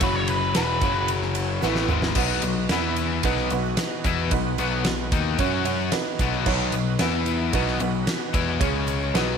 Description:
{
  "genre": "classic rock",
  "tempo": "112 BPM",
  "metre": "4/4",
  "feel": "straight",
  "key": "B major",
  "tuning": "A4 = 440 Hz",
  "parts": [
    { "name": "octave-fuzz lead guitar", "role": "melody", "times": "0.0-1.1 s", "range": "B4 to C#5", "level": "-28 LUFS", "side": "equal", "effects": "distortion, tape echo" },
    { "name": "warm upright piano", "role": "accompaniment", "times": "0.0-9.4 s", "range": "B3 to C#5", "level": "-30 LUFS", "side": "right 12 dB", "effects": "none" },
    { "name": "bright tonewheel organ", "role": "sustained chords", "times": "0.0-9.1 s", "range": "E3 to F#5", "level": "-33 LUFS", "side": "right 1 dB", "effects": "slow rotary speaker, overdrive, chorus vibrato" },
    { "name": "crunchy overdriven guitar", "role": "riff", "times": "0.0-9.4 s", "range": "E2 to F#4", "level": "-26 LUFS", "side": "left 11 dB", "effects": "none" },
    { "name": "growling picked electric bass", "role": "bass", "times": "0.0-9.4 s", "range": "E1 to F#2", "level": "-28 LUFS", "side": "right 1 dB", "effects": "overdrive" },
    { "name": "huge arena drum kit", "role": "drums", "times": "0.0-9.3 s", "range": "crash cymbal, kick drum, ride cymbal, snare drum, toms", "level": "-27 LUFS", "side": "right 1 dB", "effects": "none" },
    { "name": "egg shaker", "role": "percussion", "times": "0.0-9.3 s", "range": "none", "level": "-48 LUFS", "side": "left 13 dB", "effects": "none" }
  ],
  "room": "light reverb, small room ambience",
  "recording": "1960s-style stereo with parts hard left and right",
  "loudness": "-21 LUFS",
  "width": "side -6 dB against mid",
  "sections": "0.0-2.2 A section; 2.2-9.4 B section",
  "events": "lead electric guitar solo 0.0-2.2; drum fill 1.6-2.2",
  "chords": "0.0 F#5; 0.6 E5; 0.8 F#5; 1.6 E5; 2.2 B; 2.7 E5; 3.2 B; 5.4 F#5; 5.9 B; 7.0 E5; 7.5 B; 8.6 C#5"
}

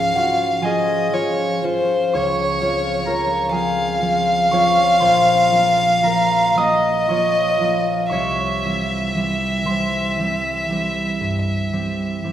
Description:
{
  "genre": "classical, romantic duo for violin and harp",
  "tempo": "37-45 BPM (dotted quarters)",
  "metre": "12/8",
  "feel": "rubato",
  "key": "unclear",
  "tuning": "A4 = 441 Hz",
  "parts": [
    { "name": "dark violin", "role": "melody", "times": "0.0-12.3 s", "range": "C5 to F5", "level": "-18 LUFS", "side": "equal", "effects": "none" },
    { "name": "concert harp", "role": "accompaniment", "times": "0.0-12.3 s", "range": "Bb1 to Eb6", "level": "-20 LUFS", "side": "right 1 dB", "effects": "none" }
  ],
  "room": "wet recital hall reverb, RT60 1.6 s",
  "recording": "heard from further back in the room",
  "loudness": "-16 LUFS",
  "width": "side -11 dB against mid",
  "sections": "0.0-12.3 A section",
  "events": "none",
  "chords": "0.0 Db; 2.1 Dbmaj7; 5.0 Bbm; 8.1 C"
}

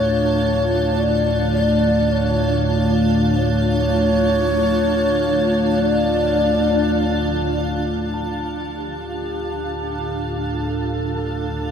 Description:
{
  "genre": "dark ambient drone",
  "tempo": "free time",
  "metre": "none",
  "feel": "none",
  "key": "D harmonic minor",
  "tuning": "A4 = 444 Hz",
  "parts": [
    { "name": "breathy mellow shakuhachi", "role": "melody", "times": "0.0-11.7 s", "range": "G4 to D5", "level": "-22 LUFS", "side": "left 1 dB", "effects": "ping-pong delay" },
    { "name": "granular cloud pad", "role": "sustained chords", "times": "0.0-11.7 s", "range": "D4 to A5", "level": "-23 LUFS", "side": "right 1 dB", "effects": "built-in reverb" },
    { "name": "analog drone", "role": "drone", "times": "0.0-11.7 s", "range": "D2 to A2", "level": "-21 LUFS", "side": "equal", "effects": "chorus" },
    { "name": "bronze singing bowl", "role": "texture", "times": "0.0-11.7 s", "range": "D4 to A5", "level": "-38 LUFS", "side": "left 2 dB", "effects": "none" }
  ],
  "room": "wet huge ambient reverb, RT60 7.3 s",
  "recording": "in a vast, echoing space",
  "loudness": "-17 LUFS",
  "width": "side -7 dB against mid",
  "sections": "0.0-8.1 A section; 8.1-11.7 B section",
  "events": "none",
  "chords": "0.0 Dm"
}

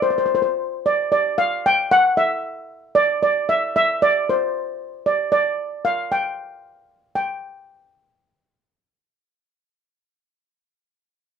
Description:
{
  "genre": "calypso",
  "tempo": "114 BPM",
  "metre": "4/4",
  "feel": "straight",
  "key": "unclear",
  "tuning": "A4 = 440 Hz",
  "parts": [
    { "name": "steel pan", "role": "solo", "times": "0.0-10.2 s", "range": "C5 to G5", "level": "-18 LUFS", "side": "equal", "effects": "none" }
  ],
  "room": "light reverb",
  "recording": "close, detailed microphones",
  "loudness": "-18 LUFS",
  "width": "side -7 dB against mid",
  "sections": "0.0-7.2 A section; 7.2-11.4 B section",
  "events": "none",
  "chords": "none"
}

